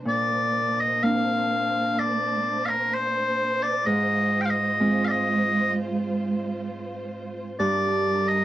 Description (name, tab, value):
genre	celtic folk, Celtic slow air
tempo	64 BPM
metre	4/4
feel	rubato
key	unclear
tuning	A4 = 440 Hz
part	Celtic harp	accompaniment	0.0-8.4 s	G2 to F4	-28 LUFS	right 1 dB	cassette tape
part	dark symphonic string section	sustained chords	0.0-8.4 s	G3 to C5	-30 LUFS	right 2 dB	cassette tape
part	loud bright bagpipes	melody	0.1-8.4 s	Bb4 to G5	-23 LUFS	left 1 dB	cassette tape
room	light reverb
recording	home recording on cassette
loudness	-22 LUFS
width	side -13 dB against mid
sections	0.1-8.4 A section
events	none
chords	0.1 Bbadd9; 3.9 Ab6; 7.6 Gm